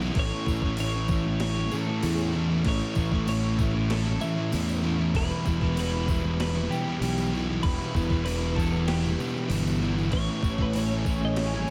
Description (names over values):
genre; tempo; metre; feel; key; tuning
rock, shoegaze and dream pop; 96 BPM; 4/4; straight; A major; A4 = 440 Hz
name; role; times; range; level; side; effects
crunchy overdriven guitar; riff; 0.0-11.7 s; A2 to E4; -34 LUFS; equal; reverse reverb
thick fuzz guitar; riff; 0.0-11.6 s; E2 to A3; -32 LUFS; equal; distortion, subtle chorus
overdriven fingered electric bass; bass; 0.0-11.6 s; E1 to E2; -31 LUFS; equal; none
tambourine; percussion; 0.0-11.7 s; none; -51 LUFS; equal; none
gated 80s digital drum machine; drums; 0.1-11.5 s; crash cymbal, kick drum, snare drum; -34 LUFS; equal; gated reverb, gated reverb snare
twelve-string electric guitar; melody; 0.2-11.7 s; G4 to E5; -38 LUFS; equal; delay
dark analog pad; sustained chords; 10.5-11.7 s; C#5 to G#5; -39 LUFS; equal; chorus
picked twelve-string acoustic guitar; arpeggios; 10.4-11.7 s; C#4 to E4; -42 LUFS; equal; none
room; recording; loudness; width
moderate lush hall reverb, RT60 2.7 s; dreamy mix soaked in reverb; -26 LUFS; mono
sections
0.0-11.7 A section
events
none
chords
0.2 A; 5.2 Em; 10.1 Amaj7